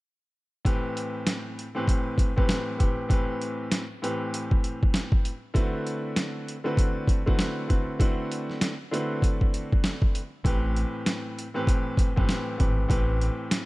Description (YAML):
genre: hip hop, boom-bap hip-hop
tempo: 98 BPM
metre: 4/4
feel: swing 60% on 16ths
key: A dorian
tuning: A4 = 440 Hz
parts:
  - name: warm grand piano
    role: accompaniment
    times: 0.6-13.6 s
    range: A2 to B4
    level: -30 LUFS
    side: equal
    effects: cassette tape, high-pass filter, low-pass filter
  - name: boom bap sampler-style drum kit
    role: drums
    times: 0.7-13.7 s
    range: hi-hat, kick drum, snare drum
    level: -24 LUFS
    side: equal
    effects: overdrive, vintage 12-bit sampler grit
  - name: deep dub fingered electric bass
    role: bass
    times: 10.4-13.3 s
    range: G1 to A1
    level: -26 LUFS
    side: equal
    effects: none
room: digital ambience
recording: none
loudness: -24 LUFS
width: side -20 dB against mid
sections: 0.7-10.4 A section; 10.4-13.7 B section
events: none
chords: 0.7 Am7; 5.6 D13; 10.4 Am7